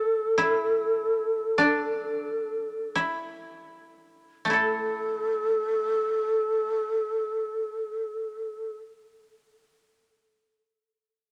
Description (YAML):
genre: japanese traditional, Japanese chamber music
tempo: 39-53 BPM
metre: 4/4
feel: rubato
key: unclear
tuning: A4 = 440 Hz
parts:
  - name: breathy mellow long shakuhachi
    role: melody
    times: 0.0-8.8 s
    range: A4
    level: -29 LUFS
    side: equal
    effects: none
  - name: koto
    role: second line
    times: 0.0-8.8 s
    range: A3 to A4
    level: -29 LUFS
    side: equal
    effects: none
room: moderate plate reverb, RT60 3.3 s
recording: none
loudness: -27 LUFS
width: mono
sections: 0.0-4.5 A section; 4.5-10.3 B section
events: slowing down 0.0-4.5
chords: none